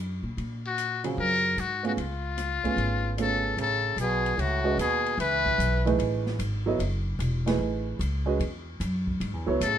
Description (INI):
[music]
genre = modal jazz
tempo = 150 BPM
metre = 4/4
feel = swing 67% on 8ths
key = F# dorian from 3.6 s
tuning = A4 = 440 Hz
[part]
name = upright bass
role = bass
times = 0.0-9.8 s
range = E1 to Bb2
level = -29 LUFS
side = equal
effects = none
[part]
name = open jazz drum kit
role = drums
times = 0.4-9.7 s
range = hi-hat, kick drum, ride cymbal, snare drum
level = -39 LUFS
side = left 1 dB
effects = none
[part]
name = trumpet with metal mute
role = melody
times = 0.7-6.0, 9.6-9.8 s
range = F4 to B4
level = -27 LUFS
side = left 5 dB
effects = none
[part]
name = warm baby grand piano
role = accompaniment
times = 1.0-9.6 s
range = Db3 to D#5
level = -28 LUFS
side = right 4 dB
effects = none
[part]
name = bright trombone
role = second line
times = 3.2-5.9, 9.6-9.8 s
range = A2 to E3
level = -32 LUFS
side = right 6 dB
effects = none
[sound]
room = moderate studio reverb, RT60 0.7 s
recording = minimal, uncompressed stereo recording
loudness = -25 LUFS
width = side -10 dB against mid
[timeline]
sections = 0.0-3.6 A section; 3.6-9.8 B section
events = none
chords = 0.0 Ebm11 (rootless); 2.0 Db7b13; 3.6 F#m11 (rootless); 6.8 Aadd9